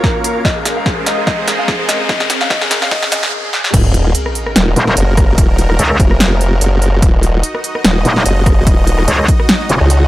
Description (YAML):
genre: heavy wobble dubstep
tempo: 146 BPM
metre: 4/4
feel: swing 54% on 16ths, half-time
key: Eb minor from 3.7 s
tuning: A4 = 440 Hz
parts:
  - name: warm concert grand piano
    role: melody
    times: 0.0-3.3 s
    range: F4 to F5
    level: -21 LUFS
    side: left 1 dB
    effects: digital delay
  - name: supersaw pad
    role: sustained chords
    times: 0.0-10.1 s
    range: Db3 to F5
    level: -22 LUFS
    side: right 1 dB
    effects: sidechain pumping
  - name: big-room dance drum kit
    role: drums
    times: 0.0-10.0 s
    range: crash cymbal, hi-hat, rim click, snare drum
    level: -17 LUFS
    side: equal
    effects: overdrive, high-pass filter on snare, high-pass filter on hats, high-pass filter on cymbals, high-pass filter on room
  - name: electronic kick drum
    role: drums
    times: 0.0-9.4 s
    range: none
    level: -14 LUFS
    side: equal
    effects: overdrive
  - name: riser and sub drop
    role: sound effects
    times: 0.0-5.4 s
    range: none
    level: -20 LUFS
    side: left 1 dB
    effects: none
  - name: granular cloud pad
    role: texture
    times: 0.0-3.3 s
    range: C4 to Bb5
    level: -24 LUFS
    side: equal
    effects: built-in reverb, sidechain pumping
  - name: formant-sweep wobble bass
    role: bass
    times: 3.7-10.1 s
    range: Eb1 to Db2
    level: -12 LUFS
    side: equal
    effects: chorus, overdrive
  - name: metallic wobble bass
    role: bass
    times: 4.8-9.8 s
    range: Eb1 to Db2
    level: -11 LUFS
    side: equal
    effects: chorus, overdrive
room: digital ambience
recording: high-pass filter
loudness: -10 LUFS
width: side -15 dB against mid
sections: 0.0-3.7 A section; 3.7-10.1 B section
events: build-up 0.0-3.7; drum fill 0.0-3.3, 3.5; riser 0.0-3.3; filter sweep on supersaw synth 0.0-3.7; filter sweep 0.0-3.7; stop 3.3-3.7; drop 3.7-10.1; impact 3.7-5.4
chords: 0.4 Ab; 2.1 Db6; 3.7 Ebm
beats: 0.04 | 0.45 0.86 1.27 1.68 | 2.09 2.50 2.91 3.33 | 3.74 4.15 4.56 4.97 | 5.38 5.79 6.20 6.61 | 7.02 7.43 7.85 8.26 | 8.67 9.08 9.49 9.90